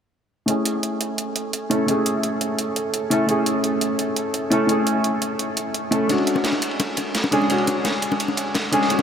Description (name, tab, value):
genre	liquid drum and bass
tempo	171 BPM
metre	4/4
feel	straight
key	unclear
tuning	A4 = 437 Hz
part	felt-muted upright piano	accompaniment	0.5-9.0 s	G#3 to A4	-20 LUFS	equal	wide subtle chorus, low-pass filter, analog delay
part	electronic hi-hat	drums	0.5-9.0 s	none	-26 LUFS	right 2 dB	none
part	crunchy breakbeat drum kit	drums	6.1-9.0 s	ride cymbal, snare drum	-26 LUFS	equal	high-pass filter on cymbals, high-pass filter on snare, high-pass filter on room
part	bongos	percussion	6.1-9.0 s	none	-27 LUFS	left 4 dB	none
room	wet huge ambient reverb, RT60 8.4 s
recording	dreamy mix soaked in reverb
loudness	-19 LUFS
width	side -8 dB against mid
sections	0.5-9.0 A section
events	filter sweep on felt piano 0.5-9.0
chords	0.5 Amaj7; 6.1 Dmaj7#11/G#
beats	| 0.48 0.83 1.18 1.53 | 1.88 2.23 2.59 2.94 | 3.29 3.64 3.99 4.34 | 4.69 5.04 5.39 5.74 | 6.09 6.45 6.80 7.15 | 7.50 7.85 8.20 8.55 | 8.90